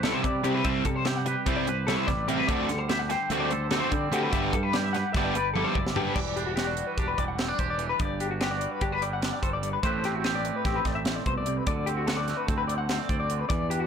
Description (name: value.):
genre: math rock and midwest emo.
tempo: 294 BPM (eighths).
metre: 9/8.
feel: straight.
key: G major.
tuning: A4 = 440 Hz.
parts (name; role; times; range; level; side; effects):
twangy electric guitar; accompaniment; 0.0-13.9 s; G2 to D5; -32 LUFS; right 8 dB; lush chorus, plate reverb.
electric guitar through a small old amp; arpeggios; 0.0-13.9 s; F#4 to G5; -30 LUFS; left 7 dB; tremolo, plate reverb.
overdriven electric guitar; riff; 0.0-6.2 s; C3 to G4; -29 LUFS; right 1 dB; none.
growling fingered electric bass; bass; 0.0-13.9 s; E1 to D3; -33 LUFS; equal; overdrive.
crisp fusion drum kit; drums; 0.0-13.8 s; crash cymbal, hi-hat, kick drum, snare drum, toms; -30 LUFS; equal; none.
room: moderate studio reverb, RT60 0.5 s.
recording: blown-out, overdriven recording, overdrive.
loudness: -25 LUFS.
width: side -7 dB against mid.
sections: 0.0-6.2 A section; 6.2-13.9 B section.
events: drum fill 5.6-6.2.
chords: 0.0 Cmaj9; 2.5 D7sus4; 4.3 G6; 6.2 Em9; 8.0 Gmaj9; 9.8 Am9; 11.7 D7.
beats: 0.04 0.25 0.45 | 0.66 0.86 1.06 1.27 1.47 1.68 1.88 2.08 2.29 | 2.49 2.70 2.90 3.11 3.31 3.51 3.72 3.92 4.13 | 4.33 4.53 4.74 4.94 5.15 5.35 5.55 5.76 5.96 | 6.17 6.37 6.58 6.78 6.98 7.19 7.39 7.60 7.80 | 8.01 8.21 8.41 8.62 8.82 9.03 9.23 9.44 9.64 | 9.84 10.05 10.25 10.46 10.66 10.86 11.07 11.27 11.47 | 11.68 11.88 12.09 12.29 12.49 12.70 12.90 13.10 13.31 | 13.51 13.71.